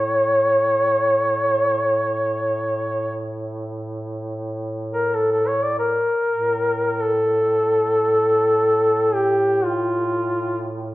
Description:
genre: caucasian folk, Caucasian lament.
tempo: free time.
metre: none.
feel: none.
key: A phrygian dominant.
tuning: A4 = 440 Hz.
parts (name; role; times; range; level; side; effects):
warm duduk; melody; 0.0-10.7 s; F4 to D5; -18 LUFS; equal; none.
mellow duduk; drone; 0.0-10.9 s; A2; -28 LUFS; right 1 dB; none.
room: wet recital hall reverb, RT60 1.4 s.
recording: recorded in a church or concert hall.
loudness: -18 LUFS.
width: side -17 dB against mid.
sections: 0.0-10.9 A section.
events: none.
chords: none.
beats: free time.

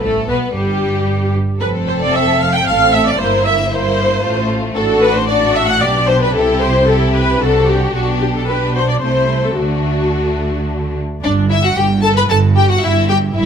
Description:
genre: quick classical-period movement for string orchestra.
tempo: 113 BPM.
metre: 3/4.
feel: straight.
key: unclear.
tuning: A4 = 440 Hz.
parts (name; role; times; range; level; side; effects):
rich studio violin section; melody; 0.0-13.5 s; F#4 to B5; -22 LUFS; left 5 dB; none.
rich studio violin section; second line; 0.0-13.5 s; G3 to B4; -20 LUFS; left 4 dB; none.
rich studio viola section; accompaniment; 0.0-13.5 s; D4 to G5; -16 LUFS; equal; none.
rich studio cello section; bass; 0.0-13.5 s; F2 to D3; -20 LUFS; right 3 dB; none.
rich studio double bass section; bass; 0.0-13.5 s; F1 to D2; -20 LUFS; right 2 dB; none.
room: light reverb.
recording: close, detailed microphones.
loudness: -12 LUFS.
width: side -7 dB against mid.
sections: 0.0-11.2 A section; 11.2-13.5 B section.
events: none.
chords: 0.0 G; 1.1 N.C.; 1.6 F; 3.2 C7/G; 4.2 F/A; 4.8 D/A; 5.8 G/B; 6.3 C6; 7.4 D7/C; 7.9 G/B; 9.0 Am/C; 9.6 D; 11.2 Em/G.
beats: | 0.02 0.55 1.07 | 1.60 2.13 2.66 | 3.19 3.72 4.24 | 4.76 5.29 5.82 | 6.35 6.88 7.42 | 7.95 8.48 9.03 | 9.58 10.13 10.68 | 11.23 11.77 12.30 | 12.83 13.36.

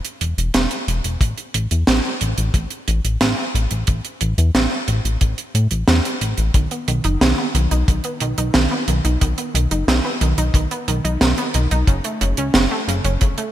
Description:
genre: synthwave.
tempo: 90 BPM.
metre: 4/4.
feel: straight.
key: unclear.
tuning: A4 = 440 Hz.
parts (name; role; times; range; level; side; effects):
deep reggae drum kit; drums; 0.0-13.5 s; hi-hat, snare drum; -20 LUFS; right 2 dB; gated reverb.
chorused synth bass; bass; 0.2-13.3 s; E1 to A2; -19 LUFS; left 1 dB; tube saturation, sidechain pumping.
kick drum; drums; 1.2-13.3 s; none; -17 LUFS; left 1 dB; none.
analog pluck; arpeggios; 6.5-13.5 s; C#3 to D#4; -24 LUFS; right 2 dB; chorus, ping-pong delay.
room: light reverb, small room ambience.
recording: bright 1980s-style digital production.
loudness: -16 LUFS.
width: side -12 dB against mid.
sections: 0.0-13.5 A section.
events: none.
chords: 0.0 E5; 1.2 A5; 6.5 B; 11.9 F#m.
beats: 0.55 | 1.21 1.88 2.54 3.21 | 3.88 4.54 5.21 5.88 | 6.54 7.21 7.88 8.54 | 9.21 9.88 10.54 11.21 | 11.88 12.54 13.21.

